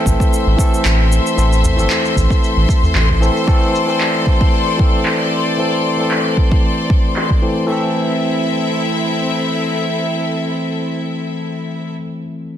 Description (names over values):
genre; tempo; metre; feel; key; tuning
organic downtempo; 114 BPM; 4/4; swing 54% on 16ths; A minor; A4 = 440 Hz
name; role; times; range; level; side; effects
barky tine electric piano; accompaniment; 0.0-12.6 s; E3 to A4; -19 LUFS; equal; overdrive, sidechain pumping, low-pass filter, tape echo
bright symphonic string section; sustained chords; 0.0-11.9 s; C4 to C6; -21 LUFS; left 3 dB; sidechain pumping
warm sub bass; bass; 0.1-3.3 s; G1 to A1; -14 LUFS; equal; tube saturation, sidechain pumping
electronic kick drum; drums; 0.1-7.4 s; none; -14 LUFS; equal; overdrive
electronic shaker and handclaps; drums; 0.1-7.7 s; none; -22 LUFS; equal; overdrive, low-pass filter on hats, low-pass filter on perc, low-pass filter on snare, low-pass filter on room
udu; percussion; 1.6-2.9 s; none; -20 LUFS; equal; none
room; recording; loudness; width
light reverb; dense, heavily limited modern master; -13 LUFS; side -10 dB against mid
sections
0.0-7.7 A section; 7.7-11.9 B section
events
filter sweep on drum 0.0-7.7; filter sweep on tine electric piano 0.0-7.7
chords
0.0 Am